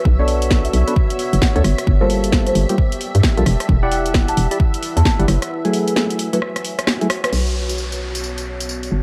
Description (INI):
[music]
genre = UK garage, two-step garage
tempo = 132 BPM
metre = 4/4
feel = swing 62% on 16ths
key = B minor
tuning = A4 = 440 Hz
[part]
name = folk marimba with medium mallets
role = melody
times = 0.0-7.3 s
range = B4 to A5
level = -29 LUFS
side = equal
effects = tape echo
[part]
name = soft string machine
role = sustained chords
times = 0.0-9.0 s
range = E5 to A5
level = -35 LUFS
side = equal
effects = ensemble chorus, sidechain pumping
[part]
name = deep dark ambient pad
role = texture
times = 0.0-9.0 s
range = B3 to A5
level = -30 LUFS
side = equal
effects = chorus, built-in reverb, sidechain pumping
[part]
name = hollow knocking FM bass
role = bass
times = 0.1-9.0 s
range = E1 to G2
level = -20 LUFS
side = equal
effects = none
[part]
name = electronic kick drum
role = drums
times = 0.1-5.2 s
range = none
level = -19 LUFS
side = equal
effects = none
[part]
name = percussive organ stab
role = stabs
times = 0.2-7.1 s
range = F#3 to F#5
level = -25 LUFS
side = equal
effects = subtle chorus, tape echo
[part]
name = house drum kit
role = drums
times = 0.3-8.9 s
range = crash cymbal, hi-hat, rim click, snare drum, tambourine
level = -25 LUFS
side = equal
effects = none
[part]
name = downlifter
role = sound effects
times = 7.3-9.0 s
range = none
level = -32 LUFS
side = equal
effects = none
[sound]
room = light reverb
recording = vinyl crackle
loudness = -18 LUFS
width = mono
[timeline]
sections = 0.0-7.3 A section; 7.3-9.0 B section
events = break 5.5-7.3; drum fill 6.4-7.3; band accent 7.2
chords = 0.1 Bm9; 1.6 Gm9; 3.5 Em9; 5.3 F#m9; 7.3 Bsus2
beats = | 0.05 0.51 0.96 1.42 | 1.87 2.33 2.78 3.23 | 3.69 4.14 4.60 5.05 | 5.51 5.96 6.42 6.87 | 7.33 7.78 8.23 8.69